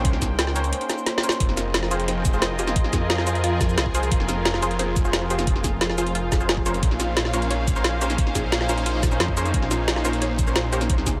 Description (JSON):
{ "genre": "dark technical drum and bass", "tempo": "177 BPM", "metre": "4/4", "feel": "straight", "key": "F minor", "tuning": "A4 = 441 Hz", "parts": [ { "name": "sweeping resonant pad", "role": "sustained chords", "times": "0.0-11.2 s", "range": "F3 to G5", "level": "-33 LUFS", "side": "equal", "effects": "chorus, sidechain pumping" }, { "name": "orchestra-hit-like synth stab", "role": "stabs", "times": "0.0-11.2 s", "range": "Db4 to C5", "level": "-33 LUFS", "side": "equal", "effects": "built-in reverb, tape echo" }, { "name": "detuned saw bass", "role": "bass", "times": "0.0-11.2 s", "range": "F1 to F2", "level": "-28 LUFS", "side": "equal", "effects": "chorus" }, { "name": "drum and bass drum kit", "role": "drums", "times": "0.0-11.1 s", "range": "hi-hat, shaker, snare drum", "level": "-28 LUFS", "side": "equal", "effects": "none" }, { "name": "electronic kick drum", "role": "drums", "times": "0.0-11.1 s", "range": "none", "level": "-25 LUFS", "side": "equal", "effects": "none" }, { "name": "muted chamber string section", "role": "texture", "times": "0.0-11.2 s", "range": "Eb4 to G5", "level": "-33 LUFS", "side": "equal", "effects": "sidechain pumping" }, { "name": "unison pluck", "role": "arpeggios", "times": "1.6-11.1 s", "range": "F4 to Db5", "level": "-35 LUFS", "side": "equal", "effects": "cassette tape, sidechain pumping, tape echo" } ], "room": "light reverb", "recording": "none", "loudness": "-22 LUFS", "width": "mono", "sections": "0.0-11.2 A section", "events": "drum fill 1.1-1.4", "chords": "0.0 Bbmadd9; 1.4 Fm", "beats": "| 0.05 0.39 0.72 1.06 | 1.40 1.74 2.08 2.42 | 2.76 3.10 3.44 3.78 | 4.12 4.45 4.79 5.13 | 5.47 5.81 6.15 6.49 | 6.83 7.17 7.50 7.84 | 8.18 8.52 8.86 9.20 | 9.54 9.88 10.22 10.56 | 10.89" }